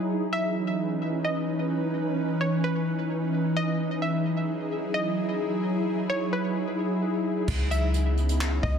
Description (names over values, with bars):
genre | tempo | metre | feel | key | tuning
hip hop, atmospheric cloud-rap | 130 BPM | 4/4 | half-time | unclear | A4 = 440 Hz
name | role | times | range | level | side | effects
ethereal airy pad | sustained chords | 0.0-8.8 s | E3 to B4 | -26 LUFS | equal | ensemble chorus, built-in reverb, sidechain pumping
glassy wavetable pluck | melody | 0.3-8.8 s | B4 to E5 | -32 LUFS | equal | chorus, tape echo
soft 808-style bass | bass | 7.5-8.8 s | C#2 | -24 LUFS | equal | none
jazz brush drum kit | drums | 7.5-8.7 s | crash cymbal, handclaps, hi-hat, kick drum | -31 LUFS | equal | none
room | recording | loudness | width
moderate digital room reverb, RT60 1.1 s, small room ambience | dense, heavily limited modern master | -24 LUFS | side -7 dB against mid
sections
0.0-7.5 A section; 7.5-8.8 B section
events
none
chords
0.1 C#m9; 3.8 Emaj9; 7.5 C#m9